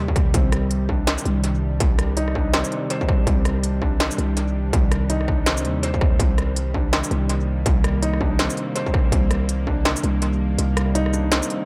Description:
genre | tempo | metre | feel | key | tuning
half-time drum and bass | 164 BPM | 4/4 | swing 60% on 16ths, half-time | C minor | A4 = 441 Hz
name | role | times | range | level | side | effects
bowed-like drone | sustained chords | 0.0-11.7 s | C3 to G4 | -31 LUFS | equal | built-in reverb, vintage 12-bit sampler grit, sidechain pumping
growling 808-style bass | bass | 0.0-11.4 s | C2 to Eb2 | -25 LUFS | equal | none
electronic kick drum | drums | 0.1-9.8 s | none | -23 LUFS | equal | distortion
industrial drum kit | drums | 0.2-11.6 s | hi-hat, rim click, shaker, snare drum | -28 LUFS | equal | analog delay
felt-muted upright piano | arpeggios | 0.3-11.7 s | C4 to C5 | -32 LUFS | equal | dub echo
room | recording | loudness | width
light reverb, digital ambience | echo-heavy mix | -21 LUFS | mono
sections
0.0-11.7 A section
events
kick drops out 10.6-11.7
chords
0.0 Cmadd9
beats
| 0.34 0.71 1.07 1.44 | 1.81 2.17 2.54 2.90 | 3.27 3.63 4.00 4.37 | 4.73 5.10 5.46 5.83 | 6.20 6.56 6.93 7.29 | 7.66 8.03 8.39 8.76 | 9.12 9.49 9.86 10.22 | 10.59 10.95 11.32

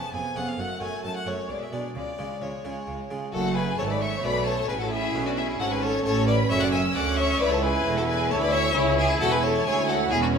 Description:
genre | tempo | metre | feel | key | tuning
classical, baroque-style concerto movement with solo episodes | 132 BPM | 3/4 | straight | F# minor | A4 = 439 Hz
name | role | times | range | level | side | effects
clear violin | melody | 0.0-10.4 s | E4 to A5 | -29 LUFS | left 2 dB | none
rich studio violin section | melody | 0.0-10.4 s | E#4 to E6 | -32 LUFS | left 3 dB | none
warm chamber violin section | second line | 0.0-10.4 s | C#4 to A5 | -30 LUFS | left 3 dB | none
clear chamber viola section | accompaniment | 0.0-10.4 s | G#3 to E4 | -31 LUFS | right 2 dB | none
harpsichord | accompaniment | 0.0-10.4 s | C#2 to G#4 | -35 LUFS | right 2 dB | none
clear symphonic double bass section | bass | 0.1-10.4 s | E1 to D2 | -31 LUFS | right 4 dB | none
rich chamber cello section | bass | 0.1-10.4 s | C#2 to C#3 | -32 LUFS | right 4 dB | none
room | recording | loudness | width
wet scoring stage reverb, RT60 1.8 s | minimal, uncompressed stereo recording | -22 LUFS | side -6 dB against mid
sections
0.0-3.3 A section; 3.3-10.4 B section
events
none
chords
0.0 C#7/E#; 0.6 F#m; 1.5 G#dim/B; 2.0 C#; 3.3 F#m; 4.7 F#m/A; 6.1 A; 8.8 C#m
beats
0.13 | 0.58 1.04 1.49 | 1.95 2.41 2.87 | 3.33 3.79 4.24 | 4.70 5.15 5.61 | 6.06 6.51 6.96 | 7.41 7.87 8.31 | 8.77 9.22 9.67 | 10.12

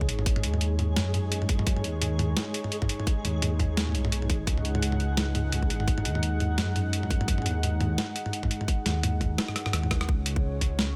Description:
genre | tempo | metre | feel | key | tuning
half-time drum and bass | 171 BPM | 4/4 | swing 57% on 16ths, half-time | unclear | A4 = 441 Hz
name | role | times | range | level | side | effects
dark analog pad | sustained chords | 0.0-11.0 s | G#3 to F#5 | -36 LUFS | equal | chorus, sidechain pumping
dark detuned saw bass | bass | 0.0-11.0 s | G#1 to F#2 | -30 LUFS | equal | tube saturation
electronic kick drum | drums | 0.0-10.7 s | none | -30 LUFS | equal | none
flickering grainy texture | texture | 0.0-10.1 s | G#4 | -44 LUFS | equal | built-in reverb
boom bap sampler-style drum kit | drums | 0.1-10.9 s | hi-hat, rim click, snare drum, toms | -32 LUFS | equal | overdrive
room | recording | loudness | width
little or no reverb | none | -27 LUFS | mono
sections
0.0-10.1 A section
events
drop 0.0-10.1; drum fill 9.4-10.1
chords
0.0 C#5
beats
| 0.26 0.61 0.97 1.32 | 1.67 2.02 2.37 2.72 | 3.07 3.42 3.77 4.12 | 4.47 4.83 5.18 5.53 | 5.88 6.23 6.58 6.93 | 7.28 7.63 7.98 8.33 | 8.69 9.04 9.39 9.74 | 10.09 10.44 10.79

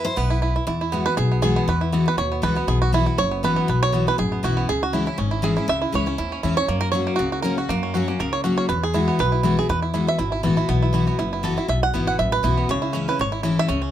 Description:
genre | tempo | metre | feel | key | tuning
bluegrass | 240 BPM | 4/4 | swing 55% on 8ths | E major | A4 = 440 Hz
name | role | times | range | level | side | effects
bluegrass banjo | melody | 0.0-13.9 s | A#3 to F#5 | -23 LUFS | right 5 dB | none
picked steel-string acoustic guitar | accompaniment | 0.0-13.9 s | E2 to C5 | -23 LUFS | left 3 dB | none
upright bass | bass | 0.0-13.9 s | F#1 to F#2 | -25 LUFS | left 1 dB | none
room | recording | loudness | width
moderate studio ambience, RT60 0.5 s | none | -19 LUFS | side -11 dB against mid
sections
0.7-13.9 A section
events
five-string banjo solo 0.7-13.9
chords
0.0 E5; 0.7 Eadd9; 2.7 Bsus4; 4.7 C#m; 6.7 F#; 8.7 Eadd9; 10.7 Bsus4; 12.7 C#m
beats
0.17 0.42 | 0.67 0.92 1.17 1.43 | 1.68 1.93 2.18 2.43 | 2.68 2.93 3.18 3.43 | 3.68 3.93 4.18 4.43 | 4.68 4.93 5.18 5.43 | 5.69 5.94 6.19 6.44 | 6.69 6.94 7.19 7.44 | 7.69 7.94 8.19 8.44 | 8.69 8.94 9.19 9.44 | 9.69 9.94 10.19 10.44 | 10.69 10.94 11.19 11.44 | 11.69 11.94 12.19 12.44 | 12.69 12.94 13.19 13.44 | 13.69

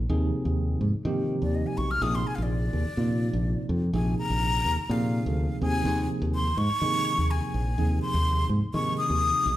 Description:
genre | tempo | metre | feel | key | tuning
electric jazz fusion | 125 BPM | 4/4 | straight | unclear | A4 = 440 Hz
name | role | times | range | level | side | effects
modern bright fingered electric bass | bass | 0.0-9.6 s | Bb1 to Eb3 | -26 LUFS | equal | none
tine electric piano | accompaniment | 0.1-9.6 s | C3 to Ab4 | -30 LUFS | right 1 dB | medium stereo tremolo
breathy jazz flute | melody | 1.4-9.6 s | D5 to F6 | -29 LUFS | left 2 dB | none
room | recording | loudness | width
wet large studio reverb, RT60 1.3 s | band playing live in one room | -24 LUFS | side -14 dB against mid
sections
0.0-9.6 A section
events
flute solo 0.0-9.6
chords
0.0 Ebsus24; 2.0 Bb9sus4; 5.6 Eb13sus4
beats
| 0.10 0.58 1.06 1.54 | 2.02 2.50 2.98 3.46 | 3.94 4.42 4.90 5.38 | 5.86 6.34 6.82 7.30 | 7.78 8.26 8.74 9.22

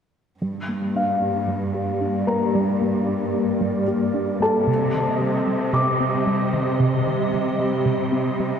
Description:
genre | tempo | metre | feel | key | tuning
cinematic | 113 BPM | 4/4 | straight | G minor | A4 = 440 Hz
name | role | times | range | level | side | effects
soft additive organ-like pad | sustained chords | 0.8-8.6 s | G3 to Eb5 | -24 LUFS | left 1 dB | ensemble chorus, built-in reverb, low-pass filter
warbly dusty pluck | arpeggios | 0.4-8.6 s | C3 to G4 | -26 LUFS | right 1 dB | chorus, low-pass filter, digital delay
rich symphonic cello section | bass | 0.4-8.6 s | G2 to C3 | -25 LUFS | right 1 dB | none
felt-muted upright piano | texture | 1.0-8.6 s | A4 to D6 | -26 LUFS | left 1 dB | digital delay
room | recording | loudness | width
wet scoring stage reverb, RT60 2.1 s | heard from further back in the room | -19 LUFS | side -7 dB against mid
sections
0.4-8.6 A section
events
filter sweep 0.4-8.6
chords
0.4 Gm; 4.7 Cm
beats
| 0.43 0.96 1.49 2.02 | 2.55 3.08 3.62 4.15 | 4.68 5.21 5.74 6.27 | 6.80 7.33 7.86 8.39

